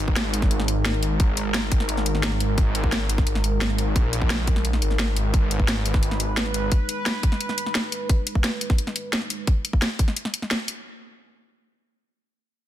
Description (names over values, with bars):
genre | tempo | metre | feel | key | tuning
dark technical drum and bass | 174 BPM | 4/4 | straight | G# minor | A4 = 436 Hz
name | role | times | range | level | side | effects
sweeping resonant pad | sustained chords | 0.0-9.5 s | G#3 to B4 | -30 LUFS | right 1 dB | chorus, sidechain pumping
wide detuned saw bass | bass | 0.0-6.7 s | G#1 to A#1 | -24 LUFS | equal | chorus
electronic kick drum | drums | 0.1-10.1 s | none | -21 LUFS | equal | overdrive
drum and bass drum kit | drums | 0.2-10.8 s | hi-hat, snare drum | -26 LUFS | equal | overdrive
room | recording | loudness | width
digital ambience | dense, heavily limited modern master | -21 LUFS | side -12 dB against mid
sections
0.0-10.9 A section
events
drop 0.0-10.9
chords
0.0 G#madd9